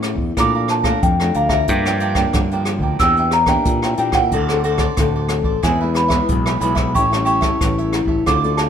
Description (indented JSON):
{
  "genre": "samba and choro",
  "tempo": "91 BPM",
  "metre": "4/4",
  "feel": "straight",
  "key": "unclear",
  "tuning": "A4 = 440 Hz",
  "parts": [
    { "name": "nylon-string guitar", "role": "accompaniment", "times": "0.0-8.7 s", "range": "F2 to A4", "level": "-23 LUFS", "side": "left 4 dB", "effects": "none" },
    { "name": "growling fingered electric bass", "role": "bass", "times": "0.0-8.7 s", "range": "A1 to Bb2", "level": "-21 LUFS", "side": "equal", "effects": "overdrive" },
    { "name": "jazz brush drum kit", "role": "drums", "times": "0.0-8.7 s", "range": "hi-hat, kick drum, rim click", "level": "-21 LUFS", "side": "equal", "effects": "none" },
    { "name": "celesta", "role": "melody", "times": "0.4-8.7 s", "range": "E5 to E6", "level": "-19 LUFS", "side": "equal", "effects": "none" },
    { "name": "cavaquinho", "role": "accompaniment", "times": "0.4-8.6 s", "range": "D4 to Bb5", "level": "-25 LUFS", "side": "right 6 dB", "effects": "none" }
  ],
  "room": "light reverb",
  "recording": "minimal, uncompressed stereo recording",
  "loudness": "-15 LUFS",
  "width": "side -8 dB against mid",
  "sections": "0.0-8.7 A section",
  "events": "none",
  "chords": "0.4 Bbmaj7; 1.7 Gm7; 3.0 Em7b5; 4.3 D7; 5.6 E; 7.0 A7"
}